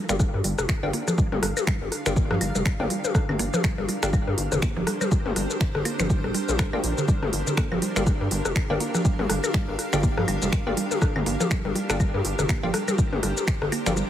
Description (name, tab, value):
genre	minimal techno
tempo	122 BPM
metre	4/4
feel	swing 58% on 16ths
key	G minor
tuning	A4 = 440 Hz
part	granular cloud pad	texture	0.4-14.1 s	D4 to F5	-33 LUFS	right 2 dB	built-in reverb, sidechain pumping
part	mallet-like synth pluck	riff	0.1-14.0 s	D3 to Bb3	-30 LUFS	right 2 dB	chorus, sidechain pumping, dub echo
part	wavetable chord stab	stabs	0.1-13.9 s	Bb3 to G4	-34 LUFS	equal	cassette tape, dub echo
part	rubbery square bass	bass	0.1-14.0 s	D1 to G2	-29 LUFS	equal	sidechain pumping
part	techno drum kit	drums	0.1-14.1 s	finger snaps, hi-hat, shaker	-31 LUFS	equal	small room ambience
part	minimal click drum kit	percussion	0.1-13.9 s	claves, rim click, toms	-28 LUFS	left 4 dB	small room ambience, dub echo
part	electronic kick drum	drums	0.2-13.6 s	none	-24 LUFS	equal	small room ambience
room	little or no reverb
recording	heavily compressed radio sound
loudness	-22 LUFS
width	side -10 dB against mid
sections	0.0-14.1 A section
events	none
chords	0.0 Gm7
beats	0.20 0.69 | 1.18 1.67 2.17 2.66 | 3.15 3.64 4.13 4.62 | 5.12 5.61 6.10 6.59 | 7.08 7.57 8.07 8.56 | 9.05 9.54 10.03 10.53 | 11.02 11.51 12.00 12.49 | 12.98 13.48 13.97